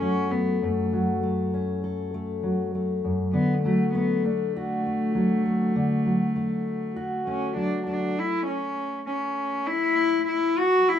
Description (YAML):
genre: folk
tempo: 100 BPM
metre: 4/4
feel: straight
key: unclear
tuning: A4 = 441 Hz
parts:
  - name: warm cello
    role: melody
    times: 0.0-11.0 s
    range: A3 to F#4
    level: -25 LUFS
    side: left 1 dB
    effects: none
  - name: fingerpicked steel-string acoustic guitar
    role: accompaniment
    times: 0.0-10.6 s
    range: F#2 to A4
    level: -26 LUFS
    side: left 1 dB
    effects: none
room: little or no reverb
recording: rough home demo mix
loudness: -23 LUFS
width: side -9 dB against mid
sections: 0.0-8.2 A section; 8.2-11.0 B section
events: none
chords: 0.0 F#m; 3.3 D; 8.2 N.C.